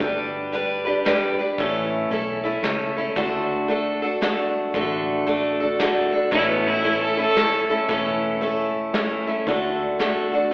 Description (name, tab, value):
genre	honky-tonk and classic country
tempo	114 BPM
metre	3/4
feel	swing 63% on 8ths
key	D major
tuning	A4 = 440 Hz
part	picked steel-string acoustic guitar	accompaniment	0.0-10.5 s	A2 to B4	-21 LUFS	equal	slapback echo
part	vintage muted fingered electric bass	bass	0.0-10.5 s	E1 to D2	-38 LUFS	equal	none
part	soft brush drum kit	drums	0.0-10.2 s	hi-hat, kick drum, snare drum	-27 LUFS	equal	none
part	clear fiddle	second line	6.3-7.7 s	B3 to A4	-21 LUFS	equal	analog delay, slapback echo
room	moderate club reverb, RT60 0.5 s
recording	live gig heard through the venue's PA, recital hall reverb, telephone sound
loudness	-20 LUFS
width	side -24 dB against mid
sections	0.0-9.5 A section; 9.5-10.5 B section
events	none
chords	0.0 G; 1.6 A; 3.2 D; 6.3 A; 9.5 D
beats	| 0.00 0.53 1.05 | 1.58 2.10 2.63 | 3.16 3.68 4.21 | 4.74 5.26 5.79 | 6.32 6.84 7.37 | 7.89 8.42 8.95 | 9.47 10.00 10.52